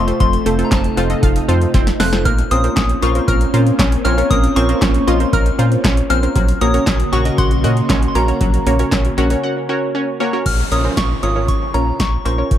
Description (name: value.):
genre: synth-pop.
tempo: 117 BPM.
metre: 4/4.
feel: straight.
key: unclear.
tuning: A4 = 440 Hz.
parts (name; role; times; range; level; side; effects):
soft synth bell; melody; 0.0-12.6 s; A5 to Gb6; -23 LUFS; left 2 dB; chorus, phaser, analog delay.
analog pluck; accompaniment; 0.0-12.5 s; C4 to Eb5; -21 LUFS; right 1 dB; chorus, analog delay.
soft string machine; sustained chords; 0.0-10.4 s; C3 to Gb4; -22 LUFS; equal; ensemble chorus.
analog pluck; arpeggios; 0.0-10.3 s; F3 to Gb5; -24 LUFS; left 2 dB; chorus, analog delay.
round analog bass; bass; 0.0-12.6 s; F1 to Bb2; -18 LUFS; equal; none.
electro analog drum machine; drums; 0.1-12.6 s; crash cymbal, handclaps, hi-hat, kick drum, snare drum; -18 LUFS; equal; analog delay.
downlifter; sound effects; 10.5-12.6 s; none; -28 LUFS; equal; none.
room: light reverb.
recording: echo-heavy mix.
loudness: -13 LUFS.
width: side -11 dB against mid.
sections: 0.0-10.5 A section; 10.5-12.6 B section.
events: drum fill 1.7-2.3; break 9.4-10.5.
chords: 0.0 F; 2.3 Bbmadd9; 6.4 Gb/Bb; 10.5 Bbm.